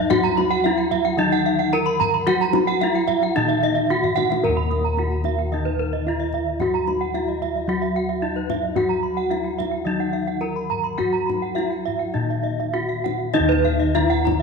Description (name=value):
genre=Balinese gamelan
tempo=99-111 BPM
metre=4/4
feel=straight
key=Eb pelog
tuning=A4 = 440 Hz
part: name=gamelan-type bronze metallophone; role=melody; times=0.0-14.4 s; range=Eb4 to Bb4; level=-24 LUFS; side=equal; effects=none
part: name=gamelan-type bronze metallophone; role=accompaniment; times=0.0-14.4 s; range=Eb3 to Bb3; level=-30 LUFS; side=right 12 dB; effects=none
part: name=gamelan-type bronze metallophone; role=arpeggios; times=0.0-14.4 s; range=Bb4 to Eb6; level=-28 LUFS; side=left 10 dB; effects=none
part: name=gamelan-type bossed gongs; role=bass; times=0.0-14.4 s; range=Eb2 to Bb4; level=-25 LUFS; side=left 2 dB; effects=none
part: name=kendang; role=percussion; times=0.1-14.4 s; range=none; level=-29 LUFS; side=left 11 dB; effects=none
part: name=gamelan-type bronze metallophone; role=arpeggios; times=0.2-14.4 s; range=Cb5 to Cb6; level=-26 LUFS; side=right 9 dB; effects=none
room=moderate plate reverb, RT60 2.8 s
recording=1960s-style stereo with parts hard left and right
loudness=-19 LUFS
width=side -4 dB against mid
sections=0.0-13.3 A section; 13.3-14.4 B section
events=drum fill 4.0-4.4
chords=none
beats=| 0.10 0.65 1.19 1.73 | 2.27 2.81 3.35 3.89 | 4.43 4.97 5.52 6.06 | 6.60 7.14 7.68 8.22 | 8.76 9.31 9.86 10.42 | 10.99 11.56 12.15 12.74 | 13.34 13.95